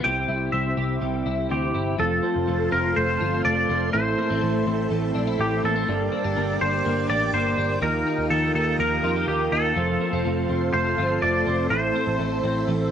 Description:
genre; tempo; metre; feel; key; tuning
indie pop; 124 BPM; 4/4; straight; F major; A4 = 440 Hz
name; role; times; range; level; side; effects
twangy electric guitar; melody; 0.0-12.6 s; G4 to G5; -25 LUFS; equal; analog chorus, cassette tape
fingerpicked steel-string acoustic guitar; accompaniment; 0.0-12.9 s; G2 to G4; -34 LUFS; right 7 dB; none
overdriven combo organ; accompaniment; 0.0-12.9 s; A3 to D5; -28 LUFS; right 9 dB; cassette tape
twelve-string electric guitar; arpeggios; 0.0-12.9 s; G2 to G4; -28 LUFS; left 9 dB; ensemble chorus, cassette tape
vintage muted picked electric bass; bass; 0.0-12.9 s; F1 to F2; -28 LUFS; equal; none
string machine, full ensemble; sustained chords; 2.0-12.9 s; Bb3 to Eb6; -33 LUFS; equal; ensemble chorus, cassette tape
room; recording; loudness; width
light reverb; home recording on cassette; -21 LUFS; side -8 dB against mid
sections
0.0-2.0 A section; 2.0-12.9 B section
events
none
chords
0.0 C; 2.0 F; 3.9 Am; 5.9 Gm; 7.8 Ebadd9; 9.8 F; 11.7 Am

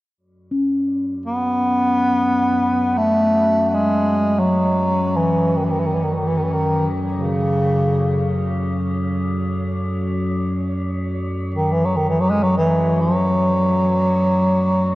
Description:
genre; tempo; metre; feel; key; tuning
world meditative, free-time meditation music; free time; none; none; unclear; A4 = 440 Hz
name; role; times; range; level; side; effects
metallic inharmonic drone; drone; 1.0-14.9 s; F#2 to F#3; -24 LUFS; equal; chorus, built-in reverb
bronze singing bowl; texture; 0.5-8.1 s; C#4; -27 LUFS; left 2 dB; none
clear bass clarinet; melody; 1.3-14.9 s; C#3 to B3; -17 LUFS; equal; none
room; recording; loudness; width
wet cathedral reverb, RT60 4.7 s; worn, warbling old tape, cassette tape, warbly pitch drift; -17 LUFS; side -17 dB against mid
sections
0.2-14.9 A section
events
none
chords
none

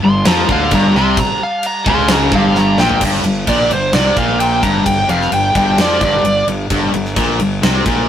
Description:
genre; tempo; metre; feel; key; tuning
hard rock; 130 BPM; 4/4; straight; G minor; A4 = 441 Hz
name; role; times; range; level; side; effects
biting lead guitar; melody; 0.0-6.5 s; C5 to C6; -16 LUFS; right 1 dB; overdrive, slapback echo
tonewheel organ; sustained chords; 0.0-3.0 s; G3 to A5; -30 LUFS; equal; none
cranked stack guitar; riff; 0.0-8.1 s; F2 to F3; -18 LUFS; right 3 dB; overdrive
distorted electric guitar; riff; 0.0-8.1 s; F2 to F3; -19 LUFS; left 6 dB; overdrive
overdriven electric guitar; riff; 0.0-3.0 s; G2 to F3; -20 LUFS; right 1 dB; none
fuzz fingered electric bass; bass; 0.0-8.1 s; F1 to F2; -20 LUFS; equal; overdrive
gated 80s drum kit; drums; 0.3-8.0 s; crash cymbal, kick drum, snare drum, toms; -18 LUFS; equal; none
room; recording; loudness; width
light reverb; rough rehearsal-room recording, tube saturation; -11 LUFS; side -10 dB against mid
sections
0.0-3.0 A section; 3.0-8.1 B section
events
lead electric guitar solo 0.0-3.0; drum fill 2.6-3.0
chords
0.0 Gm

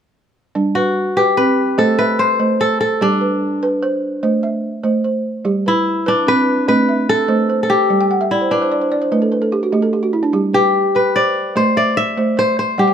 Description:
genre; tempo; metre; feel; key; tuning
west african traditional; 98 BPM (dotted quarters); 12/8; straight; G major; A4 = 441 Hz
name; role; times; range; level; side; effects
balafon; arpeggios; 0.6-12.9 s; G3 to G5; -17 LUFS; right 2 dB; none
kora; melody; 0.8-12.9 s; D4 to E5; -16 LUFS; left 2 dB; none
room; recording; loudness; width
light reverb; close, detailed microphones; -14 LUFS; side -8 dB against mid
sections
0.6-12.9 A section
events
balafon fill 8.0-10.3, 12.8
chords
0.6 G; 1.8 Am; 3.0 G; 4.2 Am; 5.5 G; 6.7 Am; 7.9 G; 9.1 N.C.; 10.3 G; 11.6 Am

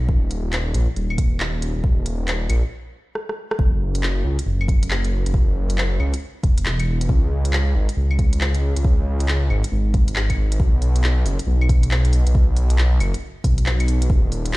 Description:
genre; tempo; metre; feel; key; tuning
future garage; 137 BPM; 4/4; swing 63% on 16ths; unclear; A4 = 439 Hz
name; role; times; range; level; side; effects
swelling detuned saw bass; bass; 0.0-14.6 s; D#1 to C#2; -19 LUFS; equal; sidechain pumping
electronic kick drum; drums; 0.1-14.2 s; none; -18 LUFS; equal; none
organic electronic drum kit; drums; 0.3-14.6 s; claves, handclaps, hi-hat, rim click; -27 LUFS; left 1 dB; none
room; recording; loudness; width
digital ambience; played on a big sound system in a bare room, stone room reverb; -17 LUFS; side -20 dB against mid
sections
0.0-3.6 A section; 3.6-14.6 B section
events
stop 2.7-3.6; drum fill 3.2-3.6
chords
none

